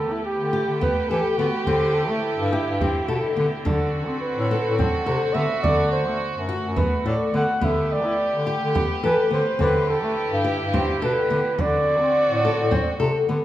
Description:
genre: contemporary instrumental, chamber music in an uneven meter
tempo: 212 BPM (eighths)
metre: 7/8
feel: straight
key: D mixolydian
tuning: A4 = 442 Hz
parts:
  - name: mellow flugelhorn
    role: melody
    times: 0.0-13.3 s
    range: E4 to F#5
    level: -24 LUFS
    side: right 2 dB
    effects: none
  - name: warm studio string section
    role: sustained chords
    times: 0.0-13.4 s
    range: D3 to B4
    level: -28 LUFS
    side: right 1 dB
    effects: none
  - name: clear bass clarinet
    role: bass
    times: 0.0-13.4 s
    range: F#2 to E4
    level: -25 LUFS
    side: left 1 dB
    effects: none
  - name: flamenco guitar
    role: arpeggios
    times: 0.5-13.4 s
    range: B3 to A4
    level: -27 LUFS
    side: left 4 dB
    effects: none
  - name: frame drum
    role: percussion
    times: 0.8-13.1 s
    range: none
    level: -28 LUFS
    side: right 2 dB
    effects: none
room: wet recital hall reverb, RT60 1.7 s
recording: none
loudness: -20 LUFS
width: side -13 dB against mid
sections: 0.0-13.4 A section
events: none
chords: 0.0 Gadd9/D; 1.7 Cmaj7; 3.7 D7; 5.6 Bm7; 7.6 Gadd9/D; 9.6 Cmaj7; 11.6 D7

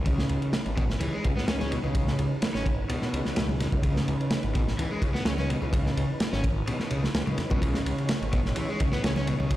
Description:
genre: breakbeat, breaks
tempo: 127 BPM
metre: 4/4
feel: straight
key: C# minor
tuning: A4 = 438 Hz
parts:
  - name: phased detuned saw bass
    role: bass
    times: 0.0-9.6 s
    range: G#1 to C#2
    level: -30 LUFS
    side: equal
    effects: phaser, tube saturation
  - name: mellow tonewheel organ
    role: sustained chords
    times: 0.1-9.6 s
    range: E3 to C#5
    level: -35 LUFS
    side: right 1 dB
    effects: chorus vibrato, slow rotary speaker, sidechain pumping
  - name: overdriven semi-hollow guitar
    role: riff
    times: 0.1-9.6 s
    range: B2 to C#4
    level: -30 LUFS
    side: left 1 dB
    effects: digital delay
  - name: crunchy breakbeat drum kit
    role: drums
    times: 0.1-9.6 s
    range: kick drum, ride cymbal, snare drum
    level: -28 LUFS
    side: equal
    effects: none
  - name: congas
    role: percussion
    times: 1.6-9.5 s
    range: none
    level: -36 LUFS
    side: left 2 dB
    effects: none
room: light reverb, small room reverb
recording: played on a big sound system in a bare room, large studio reverb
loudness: -24 LUFS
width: side -15 dB against mid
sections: 0.0-9.6 A section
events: none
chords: 0.0 C#m9

